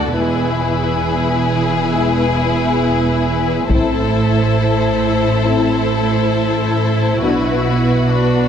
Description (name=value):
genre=cinematic, epic orchestral film score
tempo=68 BPM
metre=4/4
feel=straight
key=A dorian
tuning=A4 = 440 Hz
part: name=warm symphonic violin section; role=melody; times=0.0-8.5 s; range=B4 to D5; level=-22 LUFS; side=left 4 dB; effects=none
part: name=warm symphonic violin section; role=second line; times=0.0-8.5 s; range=F#4 to A4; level=-22 LUFS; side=left 6 dB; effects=none
part: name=rich symphonic viola section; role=accompaniment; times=0.0-8.5 s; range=D4 to F#4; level=-22 LUFS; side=equal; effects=none
part: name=rich symphonic cello section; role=bass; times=0.0-8.5 s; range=D2 to B2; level=-20 LUFS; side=right 2 dB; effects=none
part: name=warm symphonic double bass section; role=bass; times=0.0-8.5 s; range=E1 to D2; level=-19 LUFS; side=right 3 dB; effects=none
part: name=mellow French horn section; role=sustained chords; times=0.1-7.6 s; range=G#3 to F#4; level=-23 LUFS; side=left 4 dB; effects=none
part: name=taiko ensemble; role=drums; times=3.7-5.4 s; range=none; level=-20 LUFS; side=equal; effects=none
room=moderate concert hall reverb, RT60 2.2 s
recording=none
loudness=-14 LUFS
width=side -8 dB against mid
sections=0.0-8.5 A section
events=build-up 0.0-8.5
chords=0.2 E; 3.7 Am; 7.2 Bm